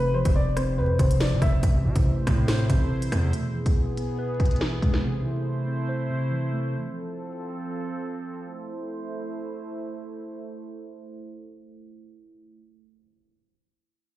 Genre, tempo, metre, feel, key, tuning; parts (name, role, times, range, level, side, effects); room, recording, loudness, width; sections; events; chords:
hip hop, drill; 141 BPM; 4/4; half-time; A harmonic minor; A4 = 440 Hz
dark upright piano; melody; 0.0-1.6 s; B4 to E5; -29 LUFS; left 2 dB; low-pass filter, tape echo
mellow tine electric piano; accompaniment; 0.0-6.8 s; B2 to C5; -26 LUFS; equal; phaser, low-pass filter
distorted 808-style bass; bass; 0.0-3.3 s; F1 to C3; -26 LUFS; equal; distortion
drill drum kit; drums; 0.3-5.0 s; hi-hat, kick drum, rim click, snare drum; -24 LUFS; equal
sweeping resonant pad; sustained chords; 1.6-12.6 s; E3 to C5; -34 LUFS; right 2 dB; chorus
digital ambience; played on a big sound system in a bare room, large studio reverb, vinyl crackle, low-pass filter; -23 LUFS; side -15 dB against mid
0.0-1.6 A section; 1.6-8.4 B section; 8.4-11.8 C section
filter sweep 1.6-8.4
0.0 F; 1.6 Am; 3.3 E; 5.0 Am; 6.7 F; 8.4 Am